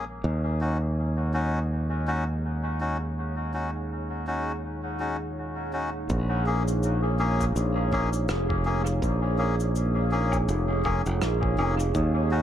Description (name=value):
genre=ambient dub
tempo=82 BPM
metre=4/4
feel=swing 58% on 16ths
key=Bb minor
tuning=A4 = 439 Hz
part: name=deep dark ambient pad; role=sustained chords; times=0.0-12.4 s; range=Bb3 to F5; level=-33 LUFS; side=right 1 dB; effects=chorus, built-in reverb
part: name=melodica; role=stabs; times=0.0-12.4 s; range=Bb3 to Ab4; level=-31 LUFS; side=left 2 dB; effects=dub echo
part: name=modern bright fingered electric bass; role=bass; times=0.0-12.4 s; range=F1 to Eb2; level=-26 LUFS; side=equal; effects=none
part: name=cabasa, rim click and woodblock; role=drums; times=6.1-12.1 s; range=none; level=-37 LUFS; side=equal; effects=dub echo
part: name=electronic kick drum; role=drums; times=6.1-12.1 s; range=none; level=-32 LUFS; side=equal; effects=none
room=light reverb, small room reverb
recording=echo-heavy mix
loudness=-24 LUFS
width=side -10 dB against mid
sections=0.0-6.1 A section; 6.1-12.4 B section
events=filter sweep on ambient pad 0.0-6.1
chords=0.2 Ebm7; 6.1 Bbm7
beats=| 0.24 0.97 1.71 2.44 | 3.17 3.90 4.63 5.37 | 6.10 6.83 7.56 8.29 | 9.02 9.76 10.49 11.22 | 11.95